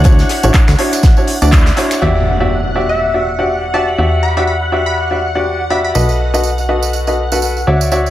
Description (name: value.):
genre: piano house.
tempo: 122 BPM.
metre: 4/4.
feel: swing 57% on 16ths.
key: E dorian.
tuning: A4 = 436 Hz.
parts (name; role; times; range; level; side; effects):
string machine, violins; sustained chords; 0.0-8.1 s; F#5; -22 LUFS; left 1 dB; ensemble chorus, sidechain pumping.
clear baby grand piano; riff; 0.0-8.1 s; D4 to F#5; -16 LUFS; left 1 dB; sidechain pumping, analog delay.
plucky analog bass; bass; 0.0-8.1 s; A1 to E2; -16 LUFS; equal; sidechain pumping.
crisp fusion drum kit; drums; 0.0-2.0 s; hi-hat, snare drum; -27 LUFS; left 2 dB; high-pass filter on hats, high-pass filter on snare, high-pass filter on room, analog delay.
electronic kick drum; drums; 0.0-1.6 s; none; -10 LUFS; equal; none.
house drum kit; drums; 0.0-2.0 s; finger snaps, handclaps, hi-hat; -20 LUFS; equal; analog delay.
tambourine; percussion; 0.0-2.0, 6.0-8.1 s; none; -25 LUFS; right 9 dB; none.
impact; sound effects; 2.0-4.0 s; none; -20 LUFS; equal; none.
plucky unison lead; melody; 2.9-5.9 s; E5 to B5; -20 LUFS; left 1 dB; analog delay.
room: moderate spring reverb, RT60 1.4 s, small room ambience.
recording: echo-heavy mix.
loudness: -11 LUFS.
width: side -14 dB against mid.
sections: 0.0-2.0 A section; 2.0-8.1 B section.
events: band accent 1.5; impact 2.0-4.0.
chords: 0.0 Dmaj9; 2.0 Em9; 6.0 B7.